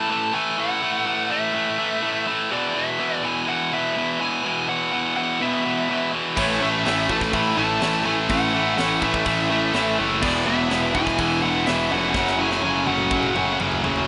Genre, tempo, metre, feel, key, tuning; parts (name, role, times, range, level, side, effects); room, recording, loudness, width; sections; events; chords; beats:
heavy metal; 124 BPM; 4/4; straight; A4 = 440 Hz
high-gain lead guitar; melody; 0.0-13.6 s; C#5 to B5; -28 LUFS; equal; distortion
high-gain distorted guitar; riff; 0.0-14.1 s; E2 to A3; -25 LUFS; equal; distortion
bluesy overdriven lead guitar; second line; 5.4-13.6 s; A3 to F#4; -33 LUFS; equal; distortion
distorted electric guitar; riff; 6.4-14.1 s; F#2 to A4; -32 LUFS; equal; distortion
heavy high-gain guitar; riff; 6.4-14.1 s; E2 to A3; -29 LUFS; equal; distortion
fuzz picked electric bass; bass; 6.4-14.1 s; E1 to A1; -32 LUFS; equal; overdrive
tight metal drum kit; drums; 6.4-14.1 s; crash cymbal, hi-hat, kick drum, snare drum, toms; -33 LUFS; equal
little or no reverb; rough home demo mix, nothing above 10.9 kHz; -22 LUFS; mono
0.0-14.1 A section
drum fill 12.2-14.1
0.0 A5; 2.5 E5; 6.4 A; 10.2 E; 12.2 F#m
0.09 | 0.57 1.06 1.54 2.02 | 2.50 2.99 3.47 3.95 | 4.43 4.92 5.40 5.88 | 6.37 6.85 7.33 7.81 | 8.30 8.78 9.26 9.74 | 10.22 10.71 11.19 11.67 | 12.15 12.63 13.12 13.60